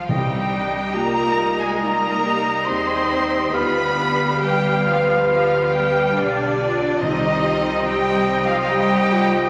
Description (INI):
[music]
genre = classical, slow romantic movement for symphony orchestra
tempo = 70 BPM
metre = 4/4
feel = rubato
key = C minor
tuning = A4 = 441 Hz
[part]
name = rich chamber violin section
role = melody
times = 0.0-9.5 s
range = D5 to C6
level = -28 LUFS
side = equal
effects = none
[part]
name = flute section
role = second line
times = 0.0-9.5 s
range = D5 to C6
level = -29 LUFS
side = equal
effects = none
[part]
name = warm symphonic violin section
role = second line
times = 0.0-9.5 s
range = D4 to C5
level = -30 LUFS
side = equal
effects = none
[part]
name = bright chamber cello section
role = bass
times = 0.0-9.5 s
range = D3 to C4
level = -28 LUFS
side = equal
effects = none
[part]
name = clear oboe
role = second line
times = 0.1-9.5 s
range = Eb5 to F5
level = -27 LUFS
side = equal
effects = none
[part]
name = clear studio viola section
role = accompaniment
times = 0.1-9.5 s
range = B3 to Ab4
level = -32 LUFS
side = equal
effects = none
[part]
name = mellow bassoon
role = accompaniment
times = 0.1-9.5 s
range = G3 to C4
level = -32 LUFS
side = equal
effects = none
[part]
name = dark French horn section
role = sustained chords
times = 0.1-9.5 s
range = Eb4 to B4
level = -26 LUFS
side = equal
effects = none
[part]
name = rich chamber double bass section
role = bass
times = 0.1-9.5 s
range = B1 to Eb2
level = -32 LUFS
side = equal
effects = none
[part]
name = timpani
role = percussion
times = 0.1-1.4, 7.0-8.2 s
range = C3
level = -30 LUFS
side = equal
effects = none
[sound]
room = wet concert hall reverb, RT60 2.0 s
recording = vinyl crackle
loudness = -19 LUFS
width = mono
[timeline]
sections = 0.1-9.5 A section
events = none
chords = 0.1 Cm; 3.5 G7/D; 7.0 Cm